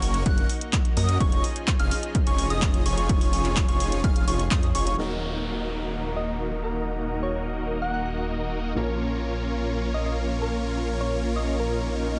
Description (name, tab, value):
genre	EDM, festival progressive house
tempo	127 BPM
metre	4/4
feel	straight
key	Eb minor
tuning	A4 = 440 Hz
part	lush unison pad	sustained chords	0.0-12.2 s	Eb3 to Bb4	-38 LUFS	equal	chorus, sidechain pumping
part	plucky unison lead	arpeggios	0.0-5.0 s	Db6 to Gb6	-34 LUFS	equal	sidechain pumping, delay
part	dense compressed supersaw	riff	0.0-12.2 s	Bb3 to Gb5	-33 LUFS	equal	sidechain pumping, low-pass filter, delay
part	detuned saw bass	bass	0.0-12.2 s	Eb1 to Gb2	-31 LUFS	equal	sidechain pumping
part	pop drum kit	drums	0.0-5.0 s	handclaps, hi-hat	-33 LUFS	equal	overdrive
part	electronic kick drum	drums	0.3-4.6 s	none	-26 LUFS	equal	overdrive
part	felt-muted upright piano	accompaniment	5.0-12.2 s	Bb2 to Bb4	-38 LUFS	equal	sidechain pumping, delay
part	downlifter and swell	sound effects	5.0-8.8, 11.9-12.2 s	none	-40 LUFS	equal	none
part	soft struck synth lead	melody	6.2-12.1 s	Bb4 to Gb5	-35 LUFS	equal	chorus, delay
room	light reverb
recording	nothing above 10.4 kHz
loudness	-25 LUFS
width	mono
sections	0.0-5.0 A section; 5.0-12.2 B section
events	drop 0.0-5.0; filter sweep on supersaw synth 5.0-12.2; swell 11.9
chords	0.0 Gb; 1.2 Dbadd9/F; 5.0 Ebm; 8.8 Bbm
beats	0.26 0.73 | 1.21 1.68 2.15 2.62 | 3.09 3.57 4.04 4.51 | 4.98 5.46 5.93 6.40 | 6.87 7.35 7.82 8.29 | 8.76 9.24 9.71 10.18 | 10.65 11.13 11.60 12.07